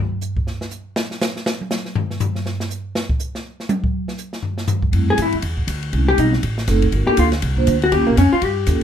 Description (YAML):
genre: jazz, small-group swing and bop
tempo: 242 BPM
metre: 4/4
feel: swing 59% on 8ths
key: F major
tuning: A4 = 440 Hz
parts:
  - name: open jazz drum kit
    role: drums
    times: 0.2-8.8 s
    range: hi-hat, kick drum, ride cymbal, snare drum, toms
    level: -22 LUFS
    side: equal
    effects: none
  - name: vibraphone with soft mallets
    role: accompaniment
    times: 4.9-8.8 s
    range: G3 to C5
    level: -21 LUFS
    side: right 3 dB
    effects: none
  - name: upright bass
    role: bass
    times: 4.9-8.8 s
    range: F#1 to G2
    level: -19 LUFS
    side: equal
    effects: none
  - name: vintage hollow-body jazz guitar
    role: melody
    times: 5.1-8.8 s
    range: Bb3 to Ab4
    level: -17 LUFS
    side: left 3 dB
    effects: none
room: light reverb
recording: minimal, uncompressed stereo recording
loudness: -17 LUFS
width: side -9 dB against mid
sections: 0.0-4.9 A section; 4.9-8.8 B section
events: drum solo 0.0-4.9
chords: 0.0 N.C.; 4.9 Fmaj9; 5.9 Cmmaj7; 6.4 F#dim7; 6.9 Gm9; 7.9 Eb9